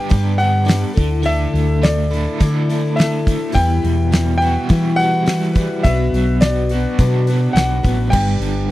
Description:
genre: folk rock and heartland rock.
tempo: 105 BPM.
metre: 4/4.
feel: straight.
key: D major.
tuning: A4 = 445 Hz.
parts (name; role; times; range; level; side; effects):
warm grand piano; melody; 0.0-8.7 s; D5 to G5; -22 LUFS; left 1 dB; none.
picked twelve-string acoustic guitar; accompaniment; 0.0-8.7 s; B2 to B4; -23 LUFS; left 4 dB; none.
crunchy overdriven guitar; riff; 0.0-8.7 s; E2 to G4; -24 LUFS; right 3 dB; tremolo.
hollow-body short-scale fingered electric bass; bass; 0.1-8.7 s; G1 to E3; -18 LUFS; equal; none.
damped 70s drum kit; drums; 0.1-8.5 s; crash cymbal, hi-hat, kick drum, snare drum; -16 LUFS; equal; none.
room: small room ambience.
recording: dry, close 1970s-style studio recording.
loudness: -14 LUFS.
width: side -16 dB against mid.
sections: 0.0-8.7 A section.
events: none.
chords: 0.0 G; 1.0 Dsus2; 3.5 Emadd9; 5.8 Bm; 8.1 G.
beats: 0.10 0.68 | 1.25 1.83 2.40 2.97 | 3.55 4.12 4.69 5.27 | 5.84 6.41 6.98 7.56 | 8.13 8.70.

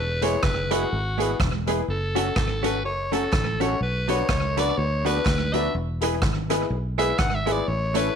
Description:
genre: ska.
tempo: 124 BPM.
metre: 4/4.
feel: swing 59% on 8ths.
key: unclear.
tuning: A4 = 440 Hz.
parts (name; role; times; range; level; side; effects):
raspy alto saxophone; melody; 0.0-8.2 s; F#4 to F#5; -27 LUFS; equal; none.
fingered electric bass; bass; 0.0-8.1 s; E1 to D2; -28 LUFS; equal; none.
hollow-body jazz guitar; accompaniment; 0.2-8.1 s; F#3 to A4; -29 LUFS; right 12 dB; slapback echo.
dark upright piano; stabs; 0.2-8.1 s; C#4 to C#5; -28 LUFS; left 13 dB; none.
street-band drum kit; drums; 0.2-8.0 s; hi-hat, kick drum, rim click; -27 LUFS; equal; slapback echo.
group handclap; percussion; 0.4-7.3 s; none; -38 LUFS; right 11 dB; none.
room: light reverb, studio ambience.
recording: 1960s-style stereo with parts hard left and right.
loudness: -21 LUFS.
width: side -7 dB against mid.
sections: 0.0-8.2 A section.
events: alto saxophone solo 0.0-8.2.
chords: 0.0 E; 1.9 F#m; 3.8 Bm; 5.7 E.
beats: 0.43 0.91 1.40 | 1.88 2.36 2.85 3.33 | 3.81 4.29 4.78 5.26 | 5.74 6.22 6.71 7.19 | 7.67 8.15.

